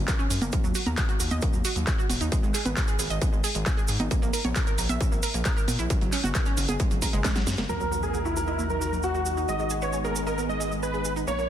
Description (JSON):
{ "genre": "uplifting trance", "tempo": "134 BPM", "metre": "4/4", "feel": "straight", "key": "G# minor", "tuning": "A4 = 442 Hz", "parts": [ { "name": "gritty driven synth bass", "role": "bass", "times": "0.0-11.5 s", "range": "D#1 to A#2", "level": "-31 LUFS", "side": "equal", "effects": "sidechain pumping" }, { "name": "analog pluck", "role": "arpeggios", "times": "0.1-11.5 s", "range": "F#3 to A#5", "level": "-33 LUFS", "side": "right 4 dB", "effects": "chorus, sidechain pumping, digital delay" }, { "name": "electronic kick drum", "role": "drums", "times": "0.1-7.3 s", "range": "none", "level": "-26 LUFS", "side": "equal", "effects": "distortion" }, { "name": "techno drum kit", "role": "drums", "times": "0.1-7.7 s", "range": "congas, handclaps, hi-hat, snare drum", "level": "-30 LUFS", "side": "equal", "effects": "none" }, { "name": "cabasa", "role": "percussion", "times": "0.1-11.5 s", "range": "none", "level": "-36 LUFS", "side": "right 5 dB", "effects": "none" }, { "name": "dense compressed supersaw", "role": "melody", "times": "7.7-11.5 s", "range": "E4 to D#5", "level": "-30 LUFS", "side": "right 1 dB", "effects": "sidechain pumping, low-pass filter, digital delay" }, { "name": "bright grand piano", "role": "second line", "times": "7.7-11.5 s", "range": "F#4 to C#5", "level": "-32 LUFS", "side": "left 1 dB", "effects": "digital delay" }, { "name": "analog string pad", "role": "sustained chords", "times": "7.7-11.5 s", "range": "D#3 to A#4", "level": "-34 LUFS", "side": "left 1 dB", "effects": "ensemble chorus, sidechain pumping" }, { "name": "impact", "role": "sound effects", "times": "7.7-9.5 s", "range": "none", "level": "-36 LUFS", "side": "equal", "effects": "none" } ], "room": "light reverb", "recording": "dense, heavily limited modern master", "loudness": "-24 LUFS", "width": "side -10 dB against mid", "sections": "0.0-7.7 A section; 7.7-11.5 B section", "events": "drum fill 7.2-7.7; impact 7.7-9.5; filter sweep on supersaw synth 7.7-11.5", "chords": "0.0 F#; 0.5 D#m; 2.3 G#5; 4.1 A#(b5, no3); 5.9 F#add9; 7.7 D#m; 9.5 G#m" }